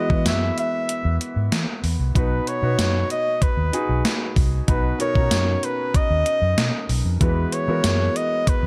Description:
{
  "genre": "1980s-style pop",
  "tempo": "95 BPM",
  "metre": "4/4",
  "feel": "straight",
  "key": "B major",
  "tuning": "A4 = 440 Hz",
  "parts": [
    { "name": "clear flugelhorn", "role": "melody", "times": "0.0-8.7 s", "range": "B4 to E5", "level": "-27 LUFS", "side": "equal", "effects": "digital delay" },
    { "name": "warm grand piano", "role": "accompaniment", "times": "0.0-8.7 s", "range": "B2 to A#5", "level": "-30 LUFS", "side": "equal", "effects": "none" },
    { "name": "vintage muted fingered electric bass", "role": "bass", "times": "0.1-8.7 s", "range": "B1 to E3", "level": "-24 LUFS", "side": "equal", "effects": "none" },
    { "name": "gated 80s digital drum machine", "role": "drums", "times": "0.1-8.6 s", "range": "hi-hat, kick drum, snare drum, tambourine", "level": "-24 LUFS", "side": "equal", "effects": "gated reverb, gated reverb snare, overdrive" }
  ],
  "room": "light reverb, digital ambience",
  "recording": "none",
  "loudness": "-21 LUFS",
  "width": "mono",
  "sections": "0.0-8.7 A section",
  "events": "none",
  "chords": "0.0 Eadd9; 2.2 B; 7.2 Eadd9",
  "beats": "0.26 0.89 1.52 | 2.15 2.79 3.42 4.05 | 4.68 5.31 5.94 6.58 | 7.21 7.84 8.47"
}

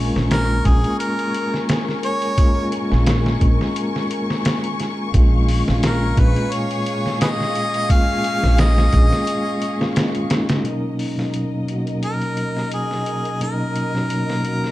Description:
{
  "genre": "trip hop",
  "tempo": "87 BPM",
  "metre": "4/4",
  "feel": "swing 54% on 16ths",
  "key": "unclear",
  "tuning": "A4 = 440 Hz",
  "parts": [
    { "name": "mellow tine electric piano", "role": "accompaniment", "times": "0.0-14.7 s", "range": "Bb2 to Ab4", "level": "-23 LUFS", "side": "equal", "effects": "tremolo, vintage 12-bit sampler grit, tape echo" },
    { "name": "dark studio string section", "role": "sustained chords", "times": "0.0-14.7 s", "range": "Ab4 to Db6", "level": "-29 LUFS", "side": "left 2 dB", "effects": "none" },
    { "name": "upright bass", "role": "bass", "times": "0.0-9.1 s", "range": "Bb1", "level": "-17 LUFS", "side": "equal", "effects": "tube saturation" },
    { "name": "trip hop sampler-style drum kit", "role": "drums", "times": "0.2-14.7 s", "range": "hi-hat, kick drum, snare drum", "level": "-21 LUFS", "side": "equal", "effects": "high-pass filter on snare, small room ambience, high-pass filter on hats, high-pass filter on kick" },
    { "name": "clear harmonica", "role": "melody", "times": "0.3-14.7 s", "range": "Ab4 to F5", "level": "-24 LUFS", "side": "equal", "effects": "dub echo" }
  ],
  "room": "light reverb, small room reverb",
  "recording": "dark, warm production",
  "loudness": "-17 LUFS",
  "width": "side -16 dB against mid",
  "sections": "0.0-10.7 A section; 10.7-14.7 B section",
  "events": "filter sweep on tine electric piano 0.0-10.7; break 9.3-10.7",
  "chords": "0.0 Bbm7; 5.1 Eb9sus4/Bb; 10.7 Bmaj7",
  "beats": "0.31 1.00 1.69 | 2.38 3.07 3.76 4.45 | 5.14 5.83 6.52 7.21 | 7.90 8.59 9.28 9.97 | 10.66 11.35 12.04 12.72 | 13.41 14.11"
}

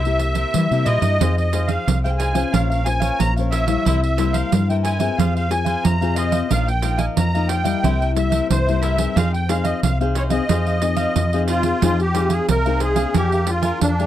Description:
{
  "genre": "samba and choro",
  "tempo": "90 BPM",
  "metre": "4/4",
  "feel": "straight",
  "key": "F minor",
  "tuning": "A4 = 435 Hz",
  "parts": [
    { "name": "musette accordion", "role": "melody", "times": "0.0-14.1 s", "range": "D4 to Bb5", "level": "-23 LUFS", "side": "right 1 dB", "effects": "none" },
    { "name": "cavaquinho", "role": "accompaniment", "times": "0.0-14.1 s", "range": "D4 to Ab5", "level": "-28 LUFS", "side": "equal", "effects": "none" },
    { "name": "nylon-string guitar", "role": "accompaniment", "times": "0.0-14.1 s", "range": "G2 to C5", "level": "-25 LUFS", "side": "left 9 dB", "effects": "none" },
    { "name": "woody fretless electric bass", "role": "bass", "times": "0.0-14.1 s", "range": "Bb1 to E3", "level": "-20 LUFS", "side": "equal", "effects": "none" },
    { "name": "pandeiro", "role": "percussion", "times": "0.1-14.1 s", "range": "none", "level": "-24 LUFS", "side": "right 8 dB", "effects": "none" }
  ],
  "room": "little or no reverb",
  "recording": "dry, close 1970s-style studio recording",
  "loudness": "-17 LUFS",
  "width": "side -12 dB against mid",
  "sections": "0.0-11.8 A section; 11.8-14.1 A section",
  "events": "none",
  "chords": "0.0 C7; 1.2 Fm7; 2.5 Bbmadd9; 3.9 C7; 5.2 Fm; 6.5 Bbsus4; 7.8 C7; 9.2 Fm7; 13.1 Bb7/F",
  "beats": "0.54 | 1.21 1.87 2.53 3.19 | 3.86 4.52 5.18 5.85 | 6.51 7.17 7.84 8.50 | 9.16 9.83 10.49 11.16 | 11.82 12.48 13.15 13.81"
}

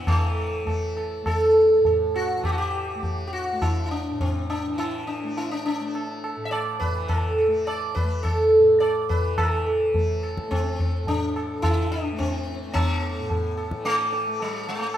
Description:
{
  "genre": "indian classical, Hindustani",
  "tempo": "100-110 BPM",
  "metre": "4/4",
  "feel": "straight",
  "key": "A raga bhimpalasi",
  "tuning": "A4 = 438 Hz",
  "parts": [
    { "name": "sitar", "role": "melody", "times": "0.0-15.0 s", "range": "G3 to E5", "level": "-23 LUFS", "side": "right 1 dB", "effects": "none" },
    { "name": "tanpura", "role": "drone", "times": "0.0-15.0 s", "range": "A2 to A3", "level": "-36 LUFS", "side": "left 2 dB", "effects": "none" },
    { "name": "tabla", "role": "percussion", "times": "0.1-15.0 s", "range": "none", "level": "-26 LUFS", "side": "equal", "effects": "none" }
  ],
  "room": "moderate lush hall reverb, RT60 2.2 s",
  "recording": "rough home demo mix",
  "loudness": "-21 LUFS",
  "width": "side -11 dB against mid",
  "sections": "0.1-9.4 A section; 9.4-15.0 B section",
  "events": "speeding up 0.0-15.0",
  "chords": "none",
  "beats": "| 0.07 0.67 1.26 1.86 | 2.45 3.04 3.62 4.21 | 4.79 5.37 5.95 6.53 | 7.10 7.68 8.25 8.82 | 9.38 9.95 10.51 11.07 | 11.63 12.19 12.75 13.30 | 13.85 14.40 14.95"
}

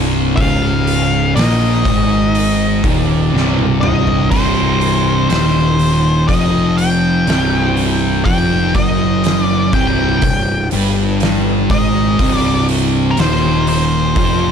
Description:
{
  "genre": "stoner and doom metal",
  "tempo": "61 BPM",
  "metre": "4/4",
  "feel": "straight",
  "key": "unclear",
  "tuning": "A4 = 440 Hz",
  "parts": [
    { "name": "thick fuzz guitar", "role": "riff", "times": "0.0-14.5 s", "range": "C2 to Bb3", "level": "-18 LUFS", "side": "left 11 dB", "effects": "distortion" },
    { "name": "thick fuzz guitar", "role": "riff", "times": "0.0-14.5 s", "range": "C2 to Bb3", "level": "-18 LUFS", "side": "right 10 dB", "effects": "distortion" },
    { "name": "fuzz picked electric bass", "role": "bass", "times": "0.0-14.5 s", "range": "C1 to Bb1", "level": "-19 LUFS", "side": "equal", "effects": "overdrive" },
    { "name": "octave-fuzz lead guitar", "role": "melody", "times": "0.4-14.5 s", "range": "Bb4 to G5", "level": "-20 LUFS", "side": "left 2 dB", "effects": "distortion, digital delay" },
    { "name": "oversized low-tuned drum kit", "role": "drums", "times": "0.4-14.4 s", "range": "crash cymbal, hi-hat, kick drum, snare drum, toms", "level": "-20 LUFS", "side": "equal", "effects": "none" }
  ],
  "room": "little or no reverb",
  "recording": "dark, warm production",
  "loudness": "-12 LUFS",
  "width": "side -7 dB against mid",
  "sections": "0.0-14.5 A section",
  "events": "drum fill 3.3-4.3",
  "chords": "0.0 Cm",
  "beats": "| 0.38 1.36 2.35 3.34 | 4.32 5.31 6.29 7.28 | 8.26 9.25 10.23 11.21 | 12.20 13.18 14.17"
}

